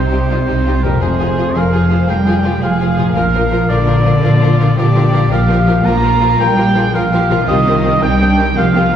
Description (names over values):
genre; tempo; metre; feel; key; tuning
cinematic; 111 BPM (dotted quarters); 12/8; straight; unclear; A4 = 440 Hz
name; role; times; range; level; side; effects
bright oboe; second line; 0.0-9.0 s; Bb4 to Bb5; -20 LUFS; right 2 dB; none
rich symphonic violin section; second line; 0.0-9.0 s; D4 to C5; -23 LUFS; left 1 dB; none
concert harp; arpeggios; 0.0-9.0 s; F2 to F5; -22 LUFS; left 5 dB; none
warm trumpet section; stabs; 0.0-9.0 s; Bb4 to Bb5; -20 LUFS; equal; none
rich symphonic cello section; bass; 0.0-9.0 s; Bb2 to Bb3; -16 LUFS; right 1 dB; none
rich symphonic double bass section; bass; 0.0-9.0 s; F1 to C2; -17 LUFS; equal; none
warm symphonic violin section; melody; 0.1-8.8 s; G4 to Bb4; -26 LUFS; left 5 dB; none
rich symphonic viola section; accompaniment; 0.1-9.0 s; Eb3 to F4; -22 LUFS; equal; none
room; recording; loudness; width
wet scoring stage reverb, RT60 1.5 s; heard from further back in the room; -11 LUFS; side -9 dB against mid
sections
0.0-9.0 A section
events
none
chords
0.0 Cm; 1.0 Fm; 3.2 Bb5; 4.2 Bb; 7.5 Cm